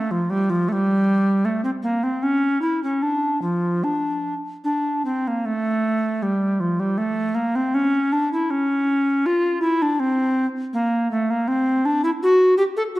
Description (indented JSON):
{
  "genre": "classical, baroque-style fantasia for unaccompanied recorder",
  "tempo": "72-82 BPM",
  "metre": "3/4",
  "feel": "rubato",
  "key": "D minor",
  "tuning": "A4 = 438 Hz",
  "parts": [
    { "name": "bright bass recorder", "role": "solo", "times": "0.0-13.0 s", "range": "F3 to A4", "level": "-19 LUFS", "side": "equal", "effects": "none" }
  ],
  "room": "wet recital hall reverb, RT60 1.5 s",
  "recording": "dark, warm production",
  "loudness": "-19 LUFS",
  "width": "side -18 dB against mid",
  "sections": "0.0-5.5 A section; 5.5-13.0 B section",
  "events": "none",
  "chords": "none"
}